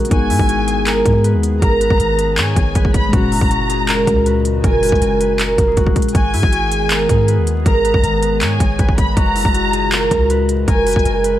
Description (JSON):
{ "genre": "hip hop, trap", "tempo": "159 BPM", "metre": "4/4", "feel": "half-time", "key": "G# minor", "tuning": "A4 = 439 Hz", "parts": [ { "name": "concert harp", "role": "melody", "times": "0.0-11.4 s", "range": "E4 to C#5", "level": "-19 LUFS", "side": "right 2 dB", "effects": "tape echo" }, { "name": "mellow tine electric piano", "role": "accompaniment", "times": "0.0-6.2 s", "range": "A#2 to G#4", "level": "-22 LUFS", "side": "left 4 dB", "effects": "none" }, { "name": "warbly tape-like pad", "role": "sustained chords", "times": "0.0-11.4 s", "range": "A#2 to G#4", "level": "-22 LUFS", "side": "left 2 dB", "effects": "chorus, built-in reverb" }, { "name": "trap drum kit", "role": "drums", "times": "0.0-11.3 s", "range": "handclaps, hi-hat, kick drum", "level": "-17 LUFS", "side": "equal", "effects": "none" }, { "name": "warm studio violin section", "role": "second line", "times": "0.1-11.4 s", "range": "G#5 to B5", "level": "-22 LUFS", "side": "equal", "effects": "tape echo" }, { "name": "clean 808-style bass", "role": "bass", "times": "0.1-11.4 s", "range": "F#1 to G#2", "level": "-19 LUFS", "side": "equal", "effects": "none" } ], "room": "digital ambience", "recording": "vinyl crackle", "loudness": "-12 LUFS", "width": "side -12 dB against mid", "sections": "0.0-6.1 A section; 6.1-11.4 A section", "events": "none", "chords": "0.1 G#m; 3.1 F#add9; 6.1 G#m; 9.2 F#add9", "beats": "| 0.11 0.49 0.87 1.24 | 1.62 2.00 2.38 2.75 | 3.13 3.51 3.88 4.26 | 4.64 5.02 5.39 5.77 | 6.15 6.53 6.90 7.28 | 7.66 8.04 8.41 8.79 | 9.17 9.55 9.92 10.30 | 10.68 11.05" }